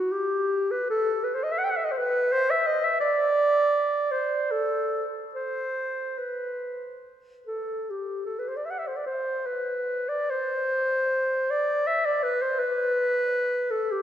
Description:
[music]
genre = classical, free, expressive piece for unaccompanied clarinet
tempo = 62-87 BPM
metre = 3/4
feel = rubato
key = unclear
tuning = A4 = 440 Hz
[part]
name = mellow clarinet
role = solo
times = 0.0-14.0 s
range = F#4 to G5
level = -24 LUFS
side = equal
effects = none
[sound]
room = wet church reverb, RT60 3.3 s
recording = recorded in a church or concert hall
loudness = -24 LUFS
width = side -10 dB against mid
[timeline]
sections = 0.0-14.0 A section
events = none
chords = none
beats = 0.11 | 0.88 1.62 2.31 | 3.01 3.73 4.52 | 5.35 6.19 7.01 | 7.91 8.68 9.47 | 10.30 11.11 11.87 | 12.59 13.31

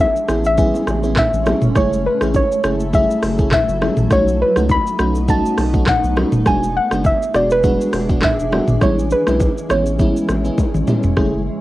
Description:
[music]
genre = afrobeats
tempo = 102 BPM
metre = 4/4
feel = swing 55% on 16ths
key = unclear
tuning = A4 = 438 Hz
[part]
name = soft round pluck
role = melody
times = 0.0-10.8 s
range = B4 to B5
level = -18 LUFS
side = equal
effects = chorus, cassette tape
[part]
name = granular cloud pad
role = sustained chords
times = 0.0-11.6 s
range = E3 to G#4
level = -25 LUFS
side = equal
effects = built-in reverb, sidechain pumping, cassette tape
[part]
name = saturated sub bass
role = bass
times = 0.0-11.5 s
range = D#1 to C#2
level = -22 LUFS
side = equal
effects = none
[part]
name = afro-pop drum kit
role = drums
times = 0.2-11.3 s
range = handclaps, hi-hat, kick drum, rim click, shaker, toms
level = -18 LUFS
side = equal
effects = cassette tape
[part]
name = FM electric piano with soft pad layer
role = accompaniment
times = 0.3-11.3 s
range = G#3 to G#4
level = -21 LUFS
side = right 1 dB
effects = chorus, cassette tape
[part]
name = bongos and congas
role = percussion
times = 0.3-11.3 s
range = none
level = -26 LUFS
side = left 2 dB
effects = none
[sound]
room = light reverb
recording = home recording on cassette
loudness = -14 LUFS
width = side -16 dB against mid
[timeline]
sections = 0.0-11.2 A section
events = drum fill 10.6-11.2; hi-hats muted 11.2-11.6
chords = 0.0 Amaj7; 1.8 F#m7; 4.1 B7; 6.5 E7; 8.8 Amaj7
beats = 0.58 1.17 | 1.76 2.35 2.93 3.52 | 4.11 4.70 5.29 5.87 | 6.46 7.05 7.64 8.23 | 8.81 9.40 9.99 10.58 | 11.17

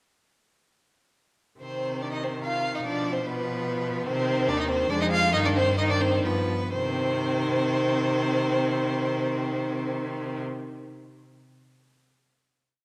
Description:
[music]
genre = quick classical-period movement for string quartet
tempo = 121-148 BPM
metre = 3/4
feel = straight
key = C minor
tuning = A4 = 439 Hz
[part]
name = rich violin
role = melody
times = 1.6-10.4 s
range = B3 to F4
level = -32 LUFS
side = equal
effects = none
[part]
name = rich violin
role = second line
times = 1.6-10.4 s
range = B4 to F5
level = -31 LUFS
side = equal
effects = none
[part]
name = clear viola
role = accompaniment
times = 1.6-10.4 s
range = Eb3 to Ab3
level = -33 LUFS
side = equal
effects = none
[part]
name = clear cello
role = bass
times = 1.6-10.4 s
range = Eb2 to C3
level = -33 LUFS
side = equal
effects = none
[sound]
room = wet concert hall reverb, RT60 2.2 s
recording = none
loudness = -26 LUFS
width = mono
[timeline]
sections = 1.6-6.7 A section; 6.7-9.7 final chord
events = slowing down 3.5-6.7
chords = 1.6 Cm; 2.8 Bdim; 4.1 Cm; 4.9 Fm; 5.3 Cmadd9/G; 6.2 G7; 6.7 Cm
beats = | 1.60 2.02 2.44 | 2.84 3.25 3.66 | 4.07 4.48 4.90 | 5.34 5.78 6.24 | 6.73 7.22 7.71 | 8.19 8.68 9.17

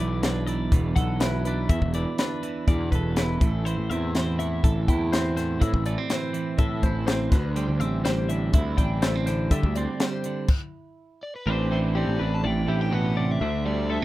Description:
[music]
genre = math rock and midwest emo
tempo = 123 BPM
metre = 4/4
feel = straight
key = unclear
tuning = A4 = 440 Hz
[part]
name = twelve-string electric guitar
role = accompaniment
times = 0.0-14.0 s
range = E2 to A4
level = -29 LUFS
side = right 5 dB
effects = warbly pitch drift
[part]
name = twelve-string electric guitar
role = arpeggios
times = 0.0-14.0 s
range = G4 to G5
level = -33 LUFS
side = left 7 dB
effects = none
[part]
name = fuzz picked electric bass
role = bass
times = 0.0-14.0 s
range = E1 to D3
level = -26 LUFS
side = equal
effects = overdrive
[part]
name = crisp fusion drum kit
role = drums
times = 0.2-10.6 s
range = crash cymbal, hi-hat, kick drum, snare drum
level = -24 LUFS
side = left 1 dB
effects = none
[part]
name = crunchy overdriven guitar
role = melody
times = 11.2-14.0 s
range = B4 to A5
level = -34 LUFS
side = equal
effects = none
[part]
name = crunchy overdriven guitar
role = riff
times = 11.7-14.0 s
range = A3 to A4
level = -37 LUFS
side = equal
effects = none
[sound]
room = little or no reverb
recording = rough home demo mix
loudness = -22 LUFS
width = side -16 dB against mid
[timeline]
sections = 0.0-11.5 A section; 11.5-14.0 B section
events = stop 10.5-11.5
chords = 0.0 E7(no3); 3.4 Am; 7.3 Am11; 13.4 D9sus4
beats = 0.23 0.72 1.21 | 1.70 2.19 2.68 3.17 | 3.66 4.15 4.64 5.13 | 5.62 6.10 6.59 7.08 | 7.57 8.06 8.55 9.03 | 9.52 10.01 10.50 10.98 | 11.47 11.96 12.44 12.93 | 13.41 13.90

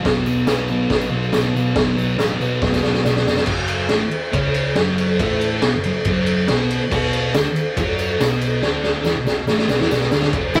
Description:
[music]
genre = garage rock duo or trio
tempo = 140 BPM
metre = 4/4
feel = straight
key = unclear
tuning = A4 = 439 Hz
[part]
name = thick fuzz guitar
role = riff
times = 0.0-10.6 s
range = F#2 to F#4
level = -24 LUFS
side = equal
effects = distortion
[part]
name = hollow-body short-scale picked electric bass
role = bass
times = 0.1-10.6 s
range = F#1 to B2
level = -28 LUFS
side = equal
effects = none
[part]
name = raw garage drum kit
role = drums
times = 0.1-10.6 s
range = crash cymbal, kick drum, ride cymbal, snare drum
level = -22 LUFS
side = equal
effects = none
[part]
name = tambourine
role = percussion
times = 0.1-3.4, 6.9-10.6 s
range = none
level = -47 LUFS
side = equal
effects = none
[part]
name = octave-fuzz lead guitar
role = melody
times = 10.6 s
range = F#4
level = -15 LUFS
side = equal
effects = distortion
[sound]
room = light reverb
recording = rough rehearsal-room recording, tube saturation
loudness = -19 LUFS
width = mono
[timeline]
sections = 0.0-3.5 A section; 3.5-10.3 B section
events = drum fill 2.6-3.5, 8.6-10.3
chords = 0.0 B5; 3.5 F#m; 6.9 B5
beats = | 0.04 0.47 0.90 1.33 | 1.76 2.19 2.62 3.05 | 3.48 3.91 4.34 4.77 | 5.20 5.63 6.06 6.49 | 6.92 7.35 7.78 8.20 | 8.63 9.06 9.49 9.91 | 10.34

